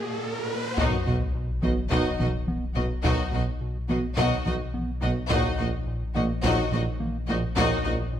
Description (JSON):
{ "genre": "cinematic, hybrid orchestral and electronic film score", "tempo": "106 BPM", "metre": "4/4", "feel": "straight", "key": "unclear", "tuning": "A4 = 438 Hz", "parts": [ { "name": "clear symphonic violin section", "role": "second line", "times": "0.0-7.9 s", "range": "Gb4 to Eb5", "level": "-33 LUFS", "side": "left 5 dB", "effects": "none" }, { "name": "rich symphonic cello section", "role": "bass", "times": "0.0-7.9 s", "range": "Bb2 to B2", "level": "-32 LUFS", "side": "right 2 dB", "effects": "none" }, { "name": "riser and sub drop", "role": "sound effects", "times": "0.0-3.0 s", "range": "none", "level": "-32 LUFS", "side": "equal", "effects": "none" }, { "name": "clear symphonic violin section", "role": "melody", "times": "0.8-7.9 s", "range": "D#5", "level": "-34 LUFS", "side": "left 4 dB", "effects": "none" }, { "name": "rich symphonic viola section", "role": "accompaniment", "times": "0.8-7.9 s", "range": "D#4", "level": "-34 LUFS", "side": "right 1 dB", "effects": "none" }, { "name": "mellow French horn section", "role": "sustained chords", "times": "0.8-7.8 s", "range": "Bb3 to D#4", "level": "-37 LUFS", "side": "left 3 dB", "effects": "none" }, { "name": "warm trombone section", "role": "sustained chords", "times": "0.8-7.8 s", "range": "D#3 to F#3", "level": "-37 LUFS", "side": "right 2 dB", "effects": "none" }, { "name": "round analog bass", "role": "riff", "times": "0.8-8.2 s", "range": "Bb2 to B3", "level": "-33 LUFS", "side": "right 1 dB", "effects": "none" }, { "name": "sub bass with octave", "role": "bass", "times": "0.8-8.2 s", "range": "Bb1 to B1", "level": "-32 LUFS", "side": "left 1 dB", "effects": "none" }, { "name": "warm symphonic double bass section", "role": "bass", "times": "0.8-7.9 s", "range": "Bb1 to B1", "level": "-33 LUFS", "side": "right 2 dB", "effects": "none" }, { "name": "warm tuba", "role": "bass", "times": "0.8-8.0 s", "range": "Bb1 to B1", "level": "-33 LUFS", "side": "right 3 dB", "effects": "none" }, { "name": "taiko ensemble", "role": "drums", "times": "0.8-8.1 s", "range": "none", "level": "-32 LUFS", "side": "left 1 dB", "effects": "none" } ], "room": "moderate scoring stage reverb, RT60 1.4 s", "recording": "none", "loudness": "-24 LUFS", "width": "side -10 dB against mid", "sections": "0.8-8.2 A section", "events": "riser 0.0-0.8; impact 0.8-3.0", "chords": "0.0 Ebm/Bb; 0.8 B; 5.3 Ebm/Bb", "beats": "0.21 | 0.78 1.35 1.91 2.48 | 3.04 3.61 4.18 4.74 | 5.31 5.87 6.44 7.01 | 7.57 8.14" }